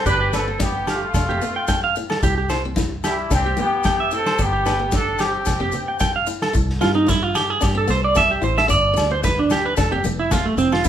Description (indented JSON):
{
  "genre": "highlife guitar band",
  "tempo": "111 BPM",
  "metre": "4/4",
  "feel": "swing 53% on 16ths",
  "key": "C major",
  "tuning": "A4 = 440 Hz",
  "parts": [
    { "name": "warm horn section", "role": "melody", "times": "0.0-6.0 s", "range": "G3 to B4", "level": "-22 LUFS", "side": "left 1 dB", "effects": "none" },
    { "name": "electric guitar at the edge of break-up", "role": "arpeggios", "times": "0.0-10.9 s", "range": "A3 to G5", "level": "-20 LUFS", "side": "right 3 dB", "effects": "none" },
    { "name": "picked old ladder-braced acoustic guitar", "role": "accompaniment", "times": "0.1-10.9 s", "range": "B3 to G4", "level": "-29 LUFS", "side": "left 5 dB", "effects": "none" },
    { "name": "fingered electric bass", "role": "bass", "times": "0.1-10.9 s", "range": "F1 to G2", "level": "-24 LUFS", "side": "equal", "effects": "none" },
    { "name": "vintage drum kit", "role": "drums", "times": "0.1-10.9 s", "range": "kick drum, snare drum", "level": "-25 LUFS", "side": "equal", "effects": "none" },
    { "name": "congas", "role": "percussion", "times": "0.1-10.9 s", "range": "none", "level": "-31 LUFS", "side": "left 1 dB", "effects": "none" },
    { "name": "maracas", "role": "percussion", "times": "0.1-10.9 s", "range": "none", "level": "-34 LUFS", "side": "left 5 dB", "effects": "none" },
    { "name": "agogo bells", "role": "percussion", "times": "0.3-10.9 s", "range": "none", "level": "-31 LUFS", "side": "left 6 dB", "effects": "none" }
  ],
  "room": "moderate large studio reverb, RT60 0.8 s",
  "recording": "band playing live in one room, lossy compression artefacts",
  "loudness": "-17 LUFS",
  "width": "side -10 dB against mid",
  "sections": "0.0-6.5 A section; 6.5-10.9 B section",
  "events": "clean electric guitar solo 6.5-10.9",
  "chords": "0.1 G; 1.1 Fadd9; 2.2 C; 4.4 G; 5.5 Fadd9; 6.5 C; 8.7 G; 9.8 F5",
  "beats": "| 0.06 0.60 1.14 1.68 | 2.22 2.76 3.31 3.85 | 4.39 4.93 5.47 6.01 | 6.55 7.08 7.62 8.16 | 8.70 9.24 9.78 10.31 | 10.85"
}